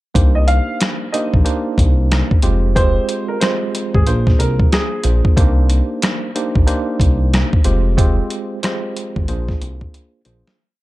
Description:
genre	hip hop, boom-bap hip-hop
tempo	92 BPM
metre	4/4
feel	swing 62% on 16ths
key	C minor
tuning	A4 = 439 Hz
part	tine electric piano	accompaniment	0.1-10.6 s	Ab3 to C5	-22 LUFS	right 2 dB	overdrive, fast stereo tremolo, cassette tape, high-pass filter, low-pass filter
part	smooth gliding synth bass	bass	0.2-10.4 s	F1 to C2	-16 LUFS	equal	none
part	dusty soul sampler-style drum kit	drums	0.2-10.6 s	hi-hat, kick drum, rim click, snare drum	-16 LUFS	equal	none
part	dark upright piano	melody	0.4-5.0 s	Ab4 to F5	-22 LUFS	right 1 dB	high-pass filter, low-pass filter, slapback echo
room	little or no reverb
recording	dark, warm production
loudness	-14 LUFS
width	side -18 dB against mid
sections	0.2-10.6 hook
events	fade-out 8.0-10.6; drum fill 9.9-10.6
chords	0.2 Cm7; 2.4 Fmadd9; 4.1 Bb7; 5.4 Cm7; 7.7 Fmadd9; 9.3 Bb7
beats	| 0.15 0.81 1.46 2.11 | 2.76 3.41 4.07 4.72 | 5.37 6.02 6.67 7.33 | 7.98 8.63 9.28 9.94

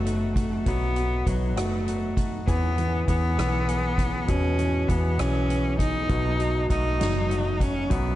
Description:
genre	six-eight pop ballad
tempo	66 BPM (dotted quarters)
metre	6/8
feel	straight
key	unclear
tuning	A4 = 441 Hz
part	clear cello	melody	0.0-8.2 s	F#3 to D#4	-28 LUFS	equal	none
part	clear baby grand piano	accompaniment	0.0-8.2 s	F#2 to F#4	-30 LUFS	equal	none
part	direct-recorded clean electric guitar	arpeggios	0.0-8.2 s	B2 to G#4	-37 LUFS	left 4 dB	tape echo
part	vintage muted fingered electric bass	bass	0.0-8.2 s	F#1 to E2	-27 LUFS	equal	none
part	soft-mallet drum kit	drums	0.1-8.1 s	hi-hat, kick drum, rim click, snare drum	-29 LUFS	equal	none
room	small room ambience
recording	dark, warm production, nothing above 10.3 kHz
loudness	-22 LUFS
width	side -14 dB against mid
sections	0.0-8.2 A section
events	none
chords	0.0 B7; 2.5 E6; 6.1 B7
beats	| 0.67 1.57 | 2.48 3.38 | 4.29 5.20 | 6.10 7.01 | 7.91

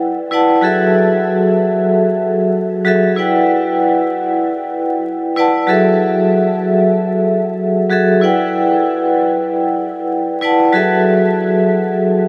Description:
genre	hip hop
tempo	95 BPM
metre	4/4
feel	swing 59% on 16ths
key	F# minor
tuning	A4 = 441 Hz
part	vibraphone with medium hard mallets	solo	0.0-12.3 s	F#3 to A5	-15 LUFS	equal	cassette tape, high-pass filter, low-pass filter, analog delay
room	wet huge ambient reverb, RT60 6.9 s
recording	dreamy mix soaked in reverb, vinyl crackle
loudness	-15 LUFS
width	mono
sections	0.0-12.3 A section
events	none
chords	0.0 Em9; 0.6 F#m9; 3.2 Em9; 5.7 F#m9; 8.2 Em9; 10.7 F#m9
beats	0.00 | 0.63 1.26 1.90 2.53 | 3.16 3.79 4.42 5.05 | 5.69 6.32 6.95 7.58 | 8.21 8.84 9.48 10.11 | 10.74 11.37 12.00

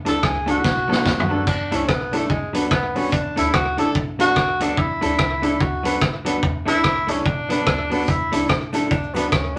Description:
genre	ska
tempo	145 BPM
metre	4/4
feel	swing 59% on 8ths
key	unclear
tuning	A4 = 440 Hz
part	dark upright piano	stabs	0.0-9.6 s	B3 to B4	-28 LUFS	equal	none
part	upright bass	bass	0.0-9.6 s	B1 to E2	-35 LUFS	equal	none
part	warm tenor saxophone	melody	0.1-9.6 s	G#3 to A4	-25 LUFS	equal	none
part	hollow-body jazz guitar	accompaniment	0.1-9.6 s	F#3 to A4	-30 LUFS	equal	slapback echo
part	vintage drum kit	drums	0.1-9.4 s	hi-hat, kick drum, rim click, snare drum, splash cymbal, toms	-24 LUFS	equal	slapback echo
part	cabasa	percussion	8.1-9.4 s	none	-54 LUFS	equal	none
room	wet studio reverb, RT60 0.5 s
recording	none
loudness	-20 LUFS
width	mono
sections	0.0-9.6 A section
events	tenor saxophone solo 0.0-9.6; drum fill 0.6-1.5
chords	0.0 E7sus4; 0.6 Bm7; 1.5 E7sus4; 2.3 D6; 3.1 E7sus4; 4.0 Bm7; 4.8 E7sus4; 5.6 D6; 6.4 E7sus4; 7.3 Bm7; 7.7 D6; 8.1 E7sus4; 8.9 D6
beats	0.23 0.64 1.06 | 1.47 1.88 2.30 2.71 | 3.12 3.54 3.95 4.36 | 4.78 5.19 5.60 6.02 | 6.43 6.84 7.26 7.67 | 8.08 8.50 8.91 9.32

